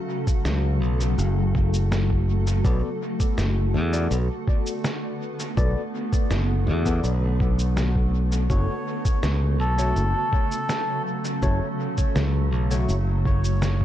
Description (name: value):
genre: ambient dub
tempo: 82 BPM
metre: 4/4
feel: straight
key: B minor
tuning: A4 = 439 Hz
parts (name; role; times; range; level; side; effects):
- granular cloud pad; sustained chords; 0.0-13.8 s; C#3 to A4; -29 LUFS; equal; built-in reverb
- electronic kick drum; drums; 0.3-13.8 s; none; -23 LUFS; equal; none
- electronic shaker and snare drum; drums; 0.3-13.8 s; none; -33 LUFS; equal; dub echo
- modern bright fingered electric bass; bass; 0.5-13.8 s; F#1 to E2; -22 LUFS; equal; none
- barky tine electric piano; stabs; 2.6-12.9 s; A3 to D5; -34 LUFS; left 5 dB; phaser, low-pass filter, dub echo
- melodica; melody; 8.5-13.8 s; A4 to C#5; -30 LUFS; equal; dub echo
room: little or no reverb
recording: dark, warm production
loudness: -21 LUFS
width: side -12 dB against mid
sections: 0.0-13.8 A section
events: none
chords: 0.0 F#m; 2.6 Bm7; 8.5 F#m